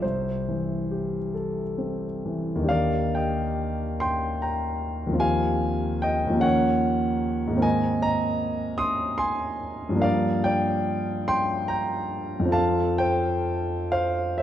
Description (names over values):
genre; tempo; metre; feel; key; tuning
classical, impressionist solo piano; 41-51 BPM (dotted quarters); 6/8; rubato; Eb major; A4 = 440 Hz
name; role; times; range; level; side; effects
warm concert grand piano; solo; 0.0-14.4 s; C2 to Eb6; -23 LUFS; equal; none
room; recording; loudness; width
moderate scoring stage reverb, RT60 2.1 s; dark, warm production; -23 LUFS; side -11 dB against mid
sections
0.0-2.7 A section; 2.7-14.4 B section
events
none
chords
0.0 C6; 2.7 Ebmaj7; 5.2 Fm9/Eb; 6.4 Gbmaj7/Eb; 7.6 Abadd9; 10.0 Gm7; 12.5 Fadd9